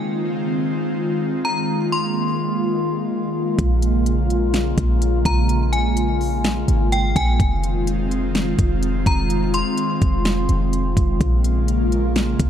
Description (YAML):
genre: hip hop, atmospheric cloud-rap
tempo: 126 BPM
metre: 4/4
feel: half-time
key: Bb minor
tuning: A4 = 440 Hz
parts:
  - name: airy breathy pad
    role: sustained chords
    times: 0.0-12.5 s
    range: Db3 to F4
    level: -22 LUFS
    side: equal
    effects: chorus, sidechain pumping
  - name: metallic FM bell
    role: melody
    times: 1.4-11.2 s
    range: G5 to C6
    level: -26 LUFS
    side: left 2 dB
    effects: chorus, digital delay
  - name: clean 808-style bass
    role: bass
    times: 3.6-12.5 s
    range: F1 to Bb1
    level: -20 LUFS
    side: equal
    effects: none
  - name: smooth R&B drum kit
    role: drums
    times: 3.6-12.5 s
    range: hi-hat, kick drum, snare drum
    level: -22 LUFS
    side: equal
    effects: none
room: light reverb, digital ambience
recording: dark, warm production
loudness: -17 LUFS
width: side -9 dB against mid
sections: 0.0-11.2 A section; 11.2-12.5 B section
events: none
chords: 0.0 Fm7; 3.6 Bbm7; 7.4 Fm7; 11.2 Bbm7